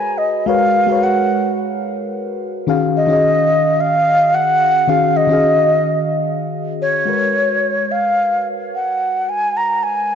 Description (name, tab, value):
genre	chillout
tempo	109 BPM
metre	4/4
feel	swing 53% on 16ths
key	G# dorian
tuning	A4 = 440 Hz
part	breathy mellow concert flute	melody	0.0-10.2 s	C#5 to A#5	-15 LUFS	equal	tape echo
part	mellow FM electric piano	accompaniment	0.0-10.2 s	D#3 to E#5	-19 LUFS	moving between left 6 dB and right 5 dB	chorus, auto-pan, digital delay
room	moderate lush hall reverb, RT60 2.0 s, studio reverb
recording	dark, warm production, nothing above 7.6 kHz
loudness	-14 LUFS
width	side -8 dB against mid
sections	0.0-7.1 A section; 7.1-10.2 B section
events	none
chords	0.0 G#m11; 2.7 D#m11; 7.1 G#m11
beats	| 0.48 1.03 1.58 2.13 | 2.68 3.23 3.78 4.33 | 4.88 5.43 5.98 6.54 | 7.08 7.63 8.19 8.74 | 9.29 9.84